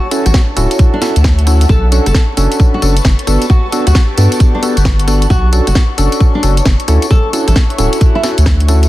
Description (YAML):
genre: UK garage, two-step garage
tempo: 133 BPM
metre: 4/4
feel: swing 64% on 16ths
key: B minor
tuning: A4 = 440 Hz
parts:
  - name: nylon-string guitar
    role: melody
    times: 0.0-8.2 s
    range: D4 to A4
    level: -21 LUFS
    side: equal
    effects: dub echo
  - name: ethereal airy pad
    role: sustained chords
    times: 0.0-8.9 s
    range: A5 to C#6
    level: -29 LUFS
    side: left 4 dB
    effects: ensemble chorus, built-in reverb, sidechain pumping
  - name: airy breathy pad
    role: texture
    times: 0.0-8.9 s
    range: D4 to A5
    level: -25 LUFS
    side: left 1 dB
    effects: chorus, phaser, sidechain pumping
  - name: percussive organ stab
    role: stabs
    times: 0.1-8.9 s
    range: B3 to A4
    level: -17 LUFS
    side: equal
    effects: chorus, dub echo
  - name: garage drum kit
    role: drums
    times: 0.1-8.9 s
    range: hi-hat, rim click, snare drum, tambourine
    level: -19 LUFS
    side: left 1 dB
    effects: none
  - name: saturated sub bass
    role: bass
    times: 0.3-8.9 s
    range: D1 to G2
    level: -10 LUFS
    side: equal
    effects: none
  - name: electronic kick drum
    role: drums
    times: 0.3-8.6 s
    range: none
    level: -10 LUFS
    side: equal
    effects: none
room: little or no reverb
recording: dense, heavily limited modern master, vinyl crackle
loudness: -9 LUFS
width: side -16 dB against mid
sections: 0.0-8.9 A section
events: none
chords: 0.0 Dmaj9; 1.7 Bm9; 3.3 Gmaj9; 5.3 Bm9; 6.9 Dmaj9